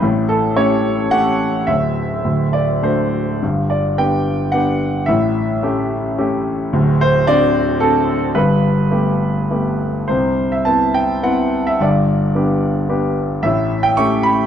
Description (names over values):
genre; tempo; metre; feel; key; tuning
classical, lyrical solo piano; 100-113 BPM; 3/4; rubato; G major; A4 = 440 Hz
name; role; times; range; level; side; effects
clear concert grand piano; solo; 0.0-14.5 s; D1 to C#6; -14 LUFS; equal; none
room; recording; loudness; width
moderate recital hall reverb, RT60 1.6 s; dark, warm production; -14 LUFS; side -9 dB against mid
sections
0.0-10.1 A section; 10.1-14.5 B section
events
none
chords
0.0 A7; 1.7 N.C.; 2.2 D; 3.4 G; 5.1 A7; 6.7 D7; 8.4 Gadd9; 10.1 Cmaj7; 11.8 G; 13.4 A7